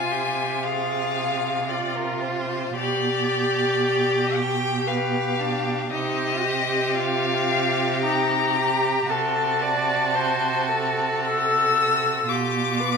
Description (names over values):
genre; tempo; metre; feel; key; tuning
classical, slow romantic movement for string quartet; 57 BPM; 3/4; rubato; C minor; A4 = 441 Hz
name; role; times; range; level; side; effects
rich violin; melody; 0.0-13.0 s; Bb4 to E6; -24 LUFS; left 5 dB; none
rich violin; second line; 0.0-13.0 s; F4 to G4; -28 LUFS; left 2 dB; none
rich viola; accompaniment; 0.0-13.0 s; D4 to D5; -27 LUFS; right 3 dB; none
rich cello; bass; 0.0-13.0 s; B2 to C3; -28 LUFS; right 6 dB; none
room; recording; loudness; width
wet recital hall reverb, RT60 1.5 s; minimal, uncompressed stereo recording; -20 LUFS; side -5 dB against mid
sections
0.0-13.0 A section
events
none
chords
0.0 Bb7sus2/C (rootless); 2.8 G7/B; 5.9 Cm; 9.1 D9/C; 12.3 Bdim